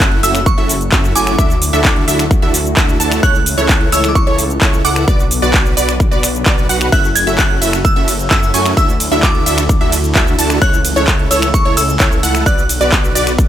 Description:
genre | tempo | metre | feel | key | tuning
EDM, festival progressive house | 130 BPM | 4/4 | straight | F# minor | A4 = 440 Hz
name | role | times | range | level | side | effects
glassy synth bell | melody | 0.0-13.5 s | C#6 to G#6 | -20 LUFS | right 1 dB | chorus, dub echo
lush unison pad | sustained chords | 0.0-13.5 s | C#3 to B4 | -24 LUFS | left 1 dB | chorus, phaser, sidechain pumping
wide unison pluck | arpeggios | 0.0-13.3 s | C#5 to A5 | -21 LUFS | right 1 dB | sidechain pumping, dub echo
dense compressed supersaw | riff | 0.0-13.3 s | C#4 to A5 | -19 LUFS | right 1 dB | sidechain pumping
wide detuned saw bass | bass | 0.0-13.5 s | F#1 to F#2 | -20 LUFS | equal | chorus, tube saturation, sidechain pumping
big-room dance drum kit | drums | 0.0-13.5 s | cabasa, finger snaps, handclaps, hi-hat, ride cymbal | -17 LUFS | equal | none
electronic kick drum | drums | 0.0-13.5 s | none | -13 LUFS | equal | none
room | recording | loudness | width
little or no reverb | none | -10 LUFS | side -11 dB against mid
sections
0.0-13.5 A section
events
none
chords
0.0 F#m7; 1.4 Dadd9; 3.2 A/C#; 5.1 Bm; 6.9 F#m7; 8.8 Dadd9; 10.6 A/C#; 12.5 Bm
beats
0.00 0.46 0.92 | 1.39 1.85 2.31 2.77 | 3.23 3.69 4.16 4.62 | 5.08 5.54 6.00 6.46 | 6.92 7.38 7.85 8.31 | 8.77 9.23 9.69 10.15 | 10.62 11.08 11.54 12.00 | 12.46 12.92 13.38

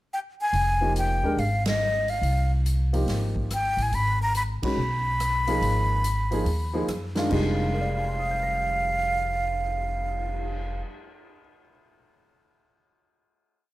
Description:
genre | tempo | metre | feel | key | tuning
modal jazz | 142 BPM | 4/4 | swing 65% on 8ths | F dorian | A4 = 440 Hz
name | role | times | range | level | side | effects
breathy mellow silver concert flute | melody | 0.1-10.8 s | Eb5 to Cb6 | -26 LUFS | equal | plate reverb
upright bass | bass | 0.5-10.8 s | F1 to Gb2 | -27 LUFS | equal | none
swinging big-band drum kit | drums | 0.5-10.6 s | crash cymbal, cymbal swell, hi-hat, kick drum, ride cymbal, rim click, snare drum | -36 LUFS | equal | none
clear concert grand piano | accompaniment | 0.8-11.9 s | F2 to Bb6 | -30 LUFS | equal | none
room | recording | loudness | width
light reverb | none | -23 LUFS | side -16 dB against mid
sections
0.0-0.5 pickup bar; 0.5-7.3 A section; 7.3-10.7 final chord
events
band accent 1.6, 4.6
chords
0.0 N.C.; 0.5 Fm9; 3.9 Abm9; 7.3 Fm9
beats
0.11 | 0.53 0.96 1.38 1.81 | 2.23 2.66 3.08 3.51 | 3.93 4.36 4.78 5.20 | 5.62 6.04 6.47 6.89 | 7.31 7.73 8.15 8.57 | 8.99 9.41 9.83 10.25

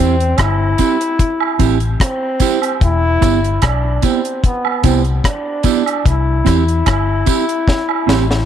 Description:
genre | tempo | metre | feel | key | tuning
roots reggae | 74 BPM | 4/4 | straight | unclear | A4 = 440 Hz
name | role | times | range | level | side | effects
bright trombone | melody | 0.0-8.5 s | B3 to E4 | -19 LUFS | left 2 dB | dub echo
mellow electric guitar | accompaniment | 0.0-8.3 s | B3 to G4 | -20 LUFS | right 12 dB | dub echo
vintage muted fingered electric bass | bass | 0.0-8.4 s | E1 to E2 | -16 LUFS | left 2 dB | tube saturation
deep reggae drum kit | drums | 0.2-8.5 s | hi-hat, kick drum, rim click, snare drum | -16 LUFS | left 1 dB | none
woodblock and tambourine | percussion | 0.4-8.3 s | none | -23 LUFS | right 11 dB | none
room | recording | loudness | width
light reverb, small room ambience | 1960s-style stereo | -13 LUFS | side -9 dB against mid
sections
0.0-8.5 A section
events
drum fill 7.7-8.5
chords
0.0 C; 2.8 Em; 6.1 C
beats
0.38 1.19 2.00 | 2.81 3.62 4.43 5.24 | 6.05 6.86 7.67

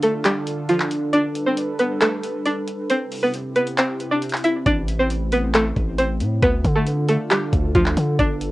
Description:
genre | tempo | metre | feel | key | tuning
hip hop, trap | 136 BPM | 4/4 | half-time | unclear | A4 = 440 Hz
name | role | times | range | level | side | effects
string-like resonator pluck | melody | 0.0-8.5 s | F3 to E5 | -20 LUFS | equal | chorus, low-pass filter, cassette tape
warbly tape-like pad | sustained chords | 0.0-8.5 s | C3 to B4 | -27 LUFS | right 1 dB | chorus, built-in reverb, cassette tape
trap drum kit | drums | 0.0-8.5 s | handclaps, hi-hat, kick drum | -24 LUFS | equal | vintage 12-bit sampler grit, cassette tape
long sustained 808-style bass | bass | 4.7-8.5 s | G1 to D3 | -22 LUFS | equal | none
room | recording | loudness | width
light reverb | home recording on cassette | -18 LUFS | side -18 dB against mid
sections
0.0-8.5 A section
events
break 0.0-4.7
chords
0.0 Dm; 1.1 Gadd9; 2.9 C; 4.7 Am; 6.4 Dm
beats
0.25 0.69 | 1.13 1.57 2.01 2.46 | 2.90 3.34 3.78 4.22 | 4.66 5.10 5.54 5.98 | 6.42 6.87 7.31 7.75 | 8.19

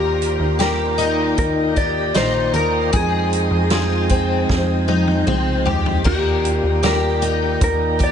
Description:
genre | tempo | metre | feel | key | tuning
dream pop | 77 BPM | 4/4 | straight | Eb major | A4 = 440 Hz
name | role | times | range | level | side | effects
mellow electric guitar | melody | 0.0-8.1 s | G4 to D5 | -22 LUFS | left 1 dB | digital delay
percussive tonewheel organ | sustained chords | 0.0-8.1 s | Eb3 to G5 | -24 LUFS | right 3 dB | chorus vibrato, slow rotary speaker
picked twelve-string acoustic guitar | arpeggios | 0.0-8.1 s | C4 to Bb4 | -22 LUFS | left 4 dB | ensemble chorus, digital delay
plucky analog bass | bass | 0.0-8.1 s | Bb1 to F2 | -22 LUFS | equal | none
vintage drum kit | drums | 0.2-8.1 s | crash cymbal, hi-hat, kick drum, snare drum, toms | -22 LUFS | equal | none
room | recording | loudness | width
light reverb, small room reverb | nothing above 10.3 kHz | -16 LUFS | side -8 dB against mid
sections
0.0-8.1 A section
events
drum fill 4.5-6.1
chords
0.0 Ebmaj7; 2.9 Fm7; 6.1 Ebmaj7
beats
0.60 1.38 2.16 | 2.94 3.72 4.50 5.28 | 6.06 6.83 7.62

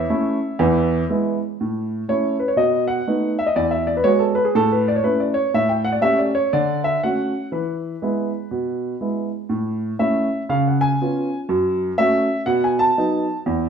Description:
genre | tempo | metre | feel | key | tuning
jazz, stride piano | 121 BPM | 4/4 | swing 63% on 8ths | A major | A4 = 440 Hz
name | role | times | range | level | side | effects
clear upright piano | solo | 0.0-13.7 s | E2 to A5 | -18 LUFS | right 1 dB | none
room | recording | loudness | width
wet large studio reverb, RT60 1.1 s | band playing live in one room | -18 LUFS | side -7 dB against mid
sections
0.0-1.6 A section; 1.6-13.7 B section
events
none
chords
0.0 A; 0.6 E; 1.6 A; 2.6 B7; 3.6 Eadd9; 4.6 A; 5.5 A7; 6.5 Dmaj7; 7.5 E; 9.5 A; 10.5 C#7; 11.5 F#m; 12.5 B7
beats
0.11 0.60 1.09 | 1.59 2.08 2.57 3.07 | 3.56 4.06 4.55 5.04 | 5.54 6.04 6.53 7.03 | 7.52 8.02 8.51 9.01 | 9.50 9.99 10.49 10.98 | 11.48 11.97 12.47 12.96 | 13.46

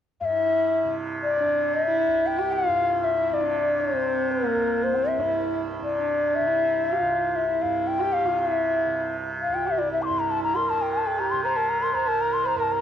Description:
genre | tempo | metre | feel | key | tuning
indian classical | 118 BPM | 4/4 | straight | C raga khamaj | A4 = 440 Hz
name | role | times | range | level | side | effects
breathy mellow bansuri | melody | 0.2-12.8 s | Bb4 to D6 | -23 LUFS | left 4 dB | cassette tape
tanpura | drone | 0.2-12.8 s | C2 to C3 | -31 LUFS | right 2 dB | cassette tape
dark sarangi | second line | 0.3-12.8 s | Bb3 to C5 | -29 LUFS | right 10 dB | cassette tape
room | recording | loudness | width
moderate lush hall reverb, RT60 3.0 s | home recording on cassette | -22 LUFS | side -9 dB against mid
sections
0.2-12.8 A section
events
none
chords
none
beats
| 0.21 0.72 1.23 1.74 | 2.26 2.77 3.28 3.79 | 4.30 4.82 5.33 5.84 | 6.35 6.86 7.37 7.88 | 8.39 8.90 9.41 9.92 | 10.43 10.93 11.44 11.95 | 12.45

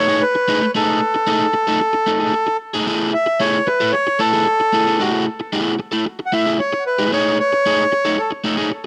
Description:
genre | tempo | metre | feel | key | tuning
funk | 113 BPM | 4/4 | straight | unclear | A4 = 442 Hz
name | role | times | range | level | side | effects
accordion | melody | 0.0-8.3 s | F#4 to F#5 | -20 LUFS | equal | tape echo
crunchy overdriven guitar | accompaniment | 0.0-8.9 s | A3 to A4 | -22 LUFS | equal | cassette tape
room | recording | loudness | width
light reverb | home recording on cassette | -18 LUFS | mono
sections
0.0-2.9 A section; 2.9-8.9 B section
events
accordion solo 2.9-8.9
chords
0.0 B13 (rootless); 2.9 Amaj7(no3); 7.1 Amaj7#11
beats
0.21 | 0.74 1.27 1.80 2.33 | 2.87 3.40 3.93 4.46 | 5.00 5.53 6.06 6.59 | 7.12 7.65 8.18 8.71

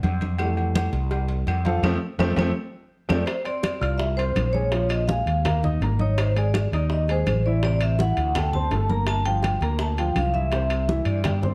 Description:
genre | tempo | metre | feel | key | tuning
Afro-Cuban jazz | 166 BPM | 4/4 | straight | unclear | A4 = 439 Hz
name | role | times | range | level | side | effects
fretless electric bass | bass | 0.0-11.5 s | G1 to G2 | -26 LUFS | equal | none
agogo bells and timbales | percussion | 0.0-11.4 s | none | -37 LUFS | equal | none
congas | percussion | 0.0-11.5 s | none | -31 LUFS | equal | none
cowbell and bongos | percussion | 0.0-11.5 s | none | -37 LUFS | equal | none
warm upright piano | accompaniment | 0.4-11.5 s | C3 to F6 | -31 LUFS | equal | none
claves | percussion | 0.4-11.4 s | none | -40 LUFS | equal | none
vibraphone with medium mallets | melody | 3.1-11.4 s | C5 to Bb5 | -30 LUFS | equal | slapback echo
room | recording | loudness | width
light reverb | dark, warm production | -23 LUFS | mono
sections
0.0-3.3 A section; 3.3-11.5 B section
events
upright piano solo 0.0-3.3; band accent 1.8-3.3; drum fill 2.6-3.3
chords
0.4 Fmaj7; 3.3 F5; 4.7 Bb5; 5.5 Eb5; 6.2 Ab; 7.6 Am; 8.3 D5; 9.1 Gm7; 10.5 Cadd9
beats
0.03 | 0.39 0.75 1.11 1.47 | 1.83 2.20 2.56 2.92 | 3.28 3.64 4.00 4.37 | 4.73 5.09 5.45 5.82 | 6.18 6.54 6.90 7.26 | 7.63 7.99 8.35 8.71 | 9.07 9.44 9.80 10.16 | 10.52 10.88 11.24

